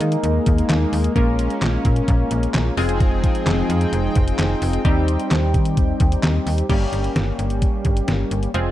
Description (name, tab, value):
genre	synth-pop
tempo	130 BPM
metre	4/4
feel	straight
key	unclear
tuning	A4 = 442 Hz
part	funky polysynth comp	accompaniment	0.0-8.7 s	G3 to Bb4	-24 LUFS	left 1 dB	chorus
part	brassy analog pad	sustained chords	0.0-6.7 s	F3 to G5	-25 LUFS	equal	chorus, tremolo
part	slap-like FM bass	bass	0.0-8.7 s	F1 to Eb3	-21 LUFS	equal	none
part	detuned 8-bit digital drum machine	drums	0.0-8.7 s	crash cymbal, handclaps, hi-hat, kick drum, snare drum	-20 LUFS	equal	none
room	light reverb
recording	dark, warm production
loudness	-17 LUFS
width	side -14 dB against mid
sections	0.0-6.7 A section; 6.7-8.7 B section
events	none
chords	0.0 Ebsus4; 1.2 Bbm7; 2.8 Fm7; 4.8 Cm/Eb; 6.7 Gdim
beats	0.23 0.70 | 1.16 1.62 2.08 2.54 | 3.00 3.46 3.93 4.39 | 4.85 5.31 5.77 6.24 | 6.70 7.16 7.62 8.08 | 8.54